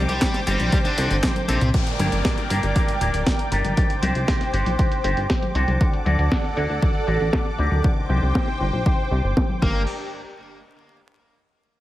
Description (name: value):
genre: italo disco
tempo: 118 BPM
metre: 4/4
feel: straight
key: G harmonic minor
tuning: A4 = 440 Hz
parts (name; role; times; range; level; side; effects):
- lush unison pad; sustained chords; 0.0-9.9 s; D4 to D6; -27 LUFS; right 1 dB; chorus, phaser
- electric guitar with an envelope filter; stabs; 0.0-9.8 s; G2 to D5; -29 LUFS; left 2 dB; vintage 12-bit sampler grit, low-pass filter, digital delay
- chorused synth bass; bass; 0.0-9.9 s; D1 to D2; -23 LUFS; equal; tube saturation
- smooth overdriven lead guitar; melody; 0.1-1.7, 9.6-9.8 s; C3 to G4; -27 LUFS; left 1 dB; digital delay
- clean 12-bit digital drum machine; drums; 0.1-9.7 s; crash cymbal, handclaps, hi-hat, snare drum, toms; -27 LUFS; equal; low-pass filter on hats, studio reverb, low-pass filter on snare, low-pass filter on toms, low-pass filter on cymbals
- electronic kick drum; drums; 0.2-9.7 s; none; -22 LUFS; equal; overdrive, studio reverb
- downlifter; sound effects; 1.7-5.8 s; none; -34 LUFS; left 1 dB; none
room: light reverb, digital ambience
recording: vinyl crackle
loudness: -19 LUFS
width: side -15 dB against mid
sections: 0.0-1.7 A section; 1.7-9.9 B section; 9.9-11.8 C section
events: drum fill 1.2-1.7; filter sweep on drum 1.7-9.9; filter sweep on clean electric guitar 1.7-9.9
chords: 0.0 Cmadd9; 1.7 Gm; 3.8 Cmadd9; 5.8 D; 7.8 Cmadd9; 9.6 Gm; 9.9 N.C.